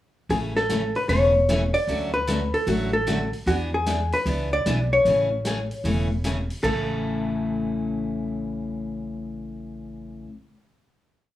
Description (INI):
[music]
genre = country, western swing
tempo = 151 BPM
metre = 4/4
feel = swing 65% on 8ths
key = A major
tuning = A4 = 443 Hz
[part]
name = vintage hollow-body jazz guitar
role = melody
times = 0.3-10.2 s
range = F#4 to D5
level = -23 LUFS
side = left 1 dB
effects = none
[part]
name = picked steel-string acoustic guitar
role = accompaniment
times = 0.3-10.3 s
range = A2 to G#4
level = -28 LUFS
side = equal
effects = none
[part]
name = upright bass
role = bass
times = 0.3-10.2 s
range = E1 to E2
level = -28 LUFS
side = equal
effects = none
[part]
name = vintage drum kit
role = drums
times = 0.3-6.8 s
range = crash cymbal, hi-hat, kick drum, snare drum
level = -34 LUFS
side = left 2 dB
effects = none
[sound]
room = moderate club reverb, RT60 0.8 s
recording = small room ambience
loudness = -21 LUFS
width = side -13 dB against mid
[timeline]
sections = 0.3-6.6 A section; 6.6-9.8 final chord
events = none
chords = 0.3 Amaj7; 1.9 Dmaj7; 3.5 E7; 5.1 Amaj7; 6.6 A